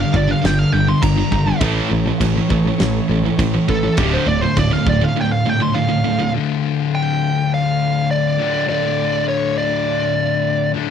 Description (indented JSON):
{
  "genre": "heavy metal",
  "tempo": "102 BPM",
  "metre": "4/4",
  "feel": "straight",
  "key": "D harmonic minor",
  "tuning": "A4 = 440 Hz",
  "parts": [
    { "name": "bluesy overdriven lead guitar", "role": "melody", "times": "0.0-10.7 s", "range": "G4 to C6", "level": "-21 LUFS", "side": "right 1 dB", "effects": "distortion, tape echo" },
    { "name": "clear symphonic string section", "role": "sustained chords", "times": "0.0-10.9 s", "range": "D3 to C#5", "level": "-32 LUFS", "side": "equal", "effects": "none" },
    { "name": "heavy high-gain guitar", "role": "riff", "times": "0.0-6.3 s", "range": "D2 to A3", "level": "-20 LUFS", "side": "right 10 dB", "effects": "distortion" },
    { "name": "sludgy distorted guitar", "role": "riff", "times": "0.0-10.9 s", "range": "D2 to A3", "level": "-20 LUFS", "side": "left 8 dB", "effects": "overdrive" },
    { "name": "modern bright picked electric bass", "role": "bass", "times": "0.0-5.0 s", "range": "D1 to A1", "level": "-20 LUFS", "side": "right 1 dB", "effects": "none" },
    { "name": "big rock drum kit", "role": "drums", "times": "0.1-5.0 s", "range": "crash cymbal, kick drum, snare drum", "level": "-23 LUFS", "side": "right 1 dB", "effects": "none" }
  ],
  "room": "little or no reverb",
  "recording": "dry, close 1970s-style studio recording",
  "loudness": "-15 LUFS",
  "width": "side -8 dB against mid",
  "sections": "0.0-6.3 A section; 6.3-10.9 B section",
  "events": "half time 0.0-6.3, 6.3-10.9; lead electric guitar solo 0.0-6.3",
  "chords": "0.0 Gm; 1.6 A; 4.0 Dm"
}